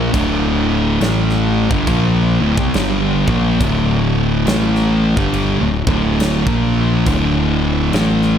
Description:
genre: stoner and doom metal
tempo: 69 BPM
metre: 4/4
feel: swing 62% on 8ths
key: D minor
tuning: A4 = 440 Hz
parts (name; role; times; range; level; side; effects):
- thick fuzz guitar; riff; 0.0-8.4 s; D2 to Bb3; -17 LUFS; left 7 dB; distortion
- thick fuzz guitar; riff; 0.0-8.4 s; D2 to Bb3; -18 LUFS; right 9 dB; distortion
- fuzz fingered electric bass; bass; 0.0-8.4 s; D1 to C2; -21 LUFS; equal; overdrive, tube saturation
- big rock drum kit; drums; 0.1-8.3 s; crash cymbal, kick drum, snare drum; -22 LUFS; equal; none
room: little or no reverb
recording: none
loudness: -13 LUFS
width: side -8 dB against mid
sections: 0.0-8.4 A section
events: none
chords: 0.0 Dm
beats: | 0.14 1.00 1.87 2.74 | 3.61 4.47 5.34 6.21 | 7.07 7.94

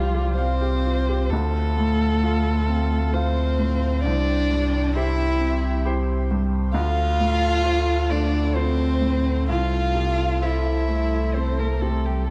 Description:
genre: neoclassical piano and strings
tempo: 66 BPM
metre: 3/4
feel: rubato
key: D minor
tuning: A4 = 440 Hz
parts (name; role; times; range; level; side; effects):
- dark violin; melody; 0.0-12.3 s; F4 to F5; -30 LUFS; equal; analog delay
- dark cello; second line; 0.0-12.3 s; F3 to F4; -29 LUFS; equal; analog delay
- felt-muted upright piano; accompaniment; 0.0-12.3 s; C2 to F5; -30 LUFS; equal; none
- pedal harmonium; sustained chords; 0.0-12.3 s; G3 to C5; -37 LUFS; equal; none
- sub bass with octave; bass; 0.0-12.3 s; C2 to D2; -25 LUFS; equal; none
room: moderate lush hall reverb, RT60 2.0 s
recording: dreamy mix soaked in reverb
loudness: -22 LUFS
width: mono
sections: 0.0-1.3 A section; 1.3-12.3 B section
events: none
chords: 0.0 Csus4; 1.3 Dm7; 4.0 C; 6.7 Dm7; 9.5 Am/C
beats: 0.37 | 1.31 2.22 3.14 | 4.05 4.96 5.86 | 6.75 7.65 8.55 | 9.49 10.42 11.35 | 12.29

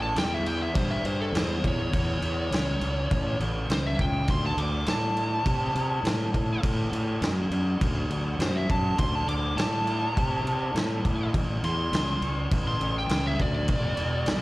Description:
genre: blues rock power trio and southern rock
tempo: 102 BPM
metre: 4/4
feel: straight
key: A mixolydian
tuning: A4 = 442 Hz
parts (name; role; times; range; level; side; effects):
- fuzz lead guitar; melody; 0.0-14.4 s; A4 to D6; -30 LUFS; equal; distortion, slapback echo
- fuzz fingered electric bass; bass; 0.0-14.4 s; E1 to C3; -28 LUFS; equal; overdrive
- vintage drum kit; drums; 0.2-14.4 s; crash cymbal, kick drum, snare drum; -28 LUFS; equal; none
room: small room ambience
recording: live gig heard through the venue's PA, recital hall reverb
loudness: -24 LUFS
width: side -19 dB against mid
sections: 0.0-14.4 A section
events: lead electric guitar solo 0.0-14.4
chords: 0.0 A7; 4.3 D7; 11.3 A; 13.7 E5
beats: 0.17 0.76 1.34 | 1.93 2.52 3.11 3.70 | 4.28 4.87 5.46 6.05 | 6.64 7.22 7.81 8.40 | 8.99 9.57 10.16 10.75 | 11.34 11.92 12.51 13.10 | 13.68 14.27

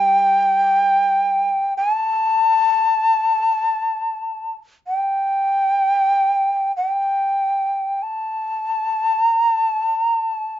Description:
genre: japanese traditional, Japanese chamber music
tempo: free time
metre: none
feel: none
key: unclear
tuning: A4 = 440 Hz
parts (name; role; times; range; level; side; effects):
- breathy bright shakuhachi; melody; 0.0-10.6 s; G5 to A5; -16 LUFS; left 1 dB; none
- koto; accompaniment; 0.0-1.5 s; G3; -39 LUFS; left 7 dB; none
room: light reverb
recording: dark, warm production, nothing above 7.6 kHz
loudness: -16 LUFS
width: side -12 dB against mid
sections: 0.0-10.6 A section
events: none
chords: none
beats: free time

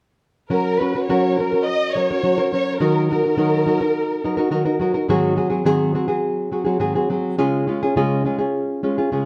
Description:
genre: mexican folk, mariachi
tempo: 104 BPM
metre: 4/4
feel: rubato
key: F# major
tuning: A4 = 437 Hz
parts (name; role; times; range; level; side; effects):
- dark studio violin section; melody; 0.5-4.8 s; A#4 to D#5; -24 LUFS; equal; none
- nylon-string guitar; accompaniment; 0.5-9.3 s; G#2 to A#4; -21 LUFS; equal; none
room: moderate recital hall reverb, RT60 1.4 s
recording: close, detailed microphones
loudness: -20 LUFS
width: mono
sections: 0.5-9.3 A section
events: none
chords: 0.5 F#; 2.8 D#m; 5.1 G#7; 7.4 C#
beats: | 0.51 1.08 1.66 2.23 | 2.81 3.38 3.95 4.52 | 5.09 5.66 6.23 6.80 | 7.38 7.95 8.53 9.12

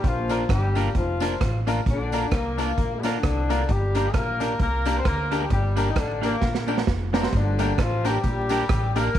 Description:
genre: ska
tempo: 132 BPM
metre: 4/4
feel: swing 58% on 8ths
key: Bb major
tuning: A4 = 439 Hz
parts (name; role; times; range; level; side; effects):
- dark horn section; melody; 0.0-9.2 s; C3 to C5; -27 LUFS; left 3 dB; none
- upright bass; bass; 0.0-9.2 s; F1 to D2; -26 LUFS; equal; none
- street-band drum kit; drums; 0.0-9.2 s; hi-hat, kick drum, rim click, snare drum; -27 LUFS; right 1 dB; none
- clean electric guitar; accompaniment; 0.3-9.1 s; Bb3 to Bb4; -31 LUFS; right 8 dB; none
- bright upright piano; stabs; 0.3-9.1 s; D4 to Bb4; -30 LUFS; left 9 dB; tape echo
- tambourine; percussion; 0.3-9.1 s; none; -46 LUFS; right 11 dB; tape echo
room: light reverb, small room ambience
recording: 1960s-style stereo with parts hard left and right, vinyl crackle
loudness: -21 LUFS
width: side -11 dB against mid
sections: 0.0-7.3 A section; 7.3-9.2 B section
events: drum fill 6.4-7.3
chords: 0.0 Bb; 7.3 Gm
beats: | 0.04 0.49 0.95 1.41 | 1.86 2.32 2.77 3.23 | 3.68 4.14 4.59 5.05 | 5.51 5.96 6.42 6.87 | 7.33 7.78 8.24 8.69 | 9.15

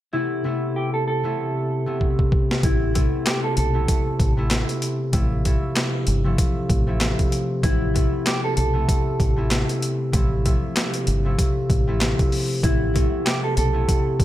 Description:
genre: hip hop, boom-bap hip-hop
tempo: 96 BPM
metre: 4/4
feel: swing 58% on 16ths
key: A minor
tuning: A4 = 440 Hz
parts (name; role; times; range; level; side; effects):
- mellow electric guitar; melody; 0.1-14.2 s; E4 to A4; -26 LUFS; equal; ping-pong delay
- concert harp; accompaniment; 0.1-14.2 s; C3 to E4; -24 LUFS; equal; cassette tape
- boom bap sampler-style drum kit; drums; 2.0-14.2 s; handclaps, hi-hat, kick drum, snare drum; -22 LUFS; equal; overdrive
- deep dub fingered electric bass; bass; 2.6-14.2 s; G1 to B1; -23 LUFS; equal; none
room: little or no reverb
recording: none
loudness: -19 LUFS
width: side -14 dB against mid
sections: 0.1-2.6 A section; 2.6-14.2 B section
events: drum fill 2.0-2.6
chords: 0.1 Amadd9; 5.1 Fmaj7; 7.6 Amadd9; 10.1 Fmaj7; 12.6 Amadd9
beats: | 0.13 0.76 1.38 2.01 | 2.63 3.26 3.88 4.51 | 5.13 5.76 6.38 7.01 | 7.63 8.26 8.88 9.51 | 10.13 10.76 11.38 12.01 | 12.63 13.26 13.88

